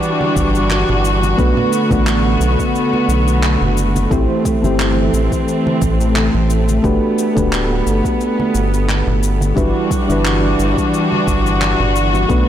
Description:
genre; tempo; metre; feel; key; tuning
sunset chillout; 88 BPM; 4/4; swing 55% on 16ths; unclear; A4 = 440 Hz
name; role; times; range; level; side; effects
soft electric-piano-like synth keys; accompaniment; 0.0-12.5 s; G3 to C5; -20 LUFS; right 1 dB; chorus, auto-pan, ping-pong delay
warm chamber string section; sustained chords; 0.0-12.5 s; D3 to F#4; -17 LUFS; left 1 dB; none
electronic cabasa and handclaps; drums; 0.0-12.4 s; none; -25 LUFS; equal; overdrive
congas; percussion; 0.2-12.3 s; none; -26 LUFS; right 2 dB; none
round analog bass; bass; 0.4-12.5 s; D1 to B1; -17 LUFS; equal; none
electronic kick drum; drums; 0.4-12.4 s; none; -20 LUFS; equal; overdrive
room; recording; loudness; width
light reverb; blown-out, overdriven recording, overdrive; -13 LUFS; side -10 dB against mid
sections
0.0-12.5 A section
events
none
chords
0.0 Em9/G; 1.4 Bm7; 4.1 Am7; 6.8 Gmaj9; 9.6 Em9/G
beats
0.02 0.71 | 1.39 2.07 2.75 3.43 | 4.12 4.80 5.48 6.16 | 6.84 7.52 8.21 8.89 | 9.57 10.25 10.93 11.62 | 12.30

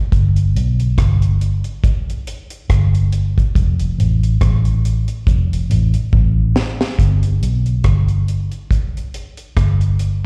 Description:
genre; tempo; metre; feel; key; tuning
roots reggae; 70 BPM; 4/4; swing 58% on 16ths; G mixolydian; A4 = 437 Hz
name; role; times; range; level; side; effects
vintage muted fingered electric bass; bass; 0.1-10.2 s; F1 to B1; -17 LUFS; equal; none
deep reggae drum kit; drums; 0.1-10.2 s; hi-hat, kick drum, rim click, snare drum; -19 LUFS; equal; none
room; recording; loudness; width
little or no reverb; live gig heard through the venue's PA, recital hall reverb; -16 LUFS; mono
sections
0.0-7.0 A section; 7.0-10.3 B section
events
drum fill 6.1-7.0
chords
none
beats
| 0.12 0.98 1.83 2.69 | 3.55 4.41 5.27 6.13 | 6.99 7.85 8.71 9.56

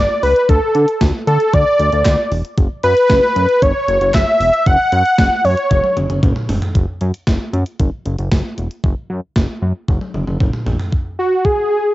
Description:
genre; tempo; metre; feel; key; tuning
synth-pop; 115 BPM; 4/4; straight; unclear; A4 = 440 Hz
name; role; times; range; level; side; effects
wide unison lead; melody; 0.0-6.0, 11.2-11.9 s; F#4 to F#5; -13 LUFS; equal; cassette tape, plate reverb
chorused synth bass; bass; 0.0-10.8 s; E1 to D3; -18 LUFS; equal; none
gated 80s digital drum machine; drums; 0.2-11.6 s; handclaps, hi-hat, kick drum, snare drum, toms; -17 LUFS; equal; gated reverb, gated reverb snare, cassette tape
room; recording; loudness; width
light reverb; home recording on cassette, nothing above 7.8 kHz; -13 LUFS; side -16 dB against mid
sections
0.0-6.8 A section; 6.8-10.9 B section; 10.9-11.9 C section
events
drum fill 5.7-6.8, 9.9-10.9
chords
0.5 D5; 2.6 F#5; 6.8 N.C.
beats
| 0.49 1.01 1.53 2.06 | 2.58 3.10 3.62 4.14 | 4.66 5.18 5.71 6.23 | 6.75 7.27 7.79 8.32 | 8.84 9.36 9.88 10.40 | 10.92 11.45

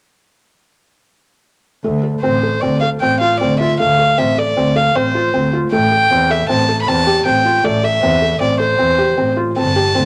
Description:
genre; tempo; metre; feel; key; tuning
contemporary instrumental, contemporary; 155 BPM; 5/4; straight; D minor; A4 = 438 Hz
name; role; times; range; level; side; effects
felt-muted upright piano; arpeggios; 1.8-10.1 s; A3 to A4; -20 LUFS; equal; none
clear double bass; bass; 1.8-10.1 s; G1 to E2; -22 LUFS; equal; none
warm violin; melody; 2.2-10.1 s; C5 to B5; -17 LUFS; equal; none
room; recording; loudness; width
moderate spring reverb, RT60 1.4 s; none; -15 LUFS; mono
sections
1.8-10.1 A section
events
none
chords
1.8 Dm7; 5.7 Am7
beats
| 1.84 2.23 2.62 3.01 3.40 | 3.79 4.18 4.56 4.95 5.33 | 5.72 6.10 6.49 6.87 7.25 | 7.63 8.02 8.40 8.79 9.17 | 9.56 9.95

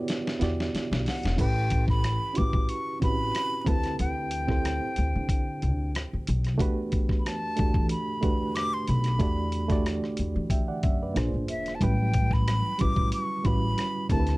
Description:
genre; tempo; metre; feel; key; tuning
R&B, neo-soul; 92 BPM; 4/4; swing 53% on 16ths; unclear; A4 = 440 Hz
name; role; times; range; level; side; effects
reed electric piano; accompaniment; 0.0-14.4 s; F#3 to G5; -31 LUFS; right 2 dB; fast tremolo
dusty soul sampler-style drum kit; drums; 0.1-14.4 s; crash cymbal, hi-hat, kick drum, rim click, snare drum; -28 LUFS; equal; none
upright bass; bass; 0.4-14.4 s; E1 to E3; -28 LUFS; equal; none
breathy silver concert flute; melody; 1.1-14.4 s; E5 to D6; -31 LUFS; left 1 dB; none
room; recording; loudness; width
little or no reverb; dark, warm production; -24 LUFS; side -20 dB against mid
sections
0.0-1.4 A section; 1.4-14.4 B section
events
drum fill 0.0-1.4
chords
0.0 Em9; 1.4 A13; 3.7 D13sus4; 6.6 Em11; 11.2 A#9; 11.8 A13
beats
0.07 0.72 | 1.38 2.03 2.68 3.33 | 3.98 4.64 5.29 5.94 | 6.59 7.25 7.90 8.55 | 9.20 9.85 10.51 11.16 | 11.81 12.46 13.12 13.77

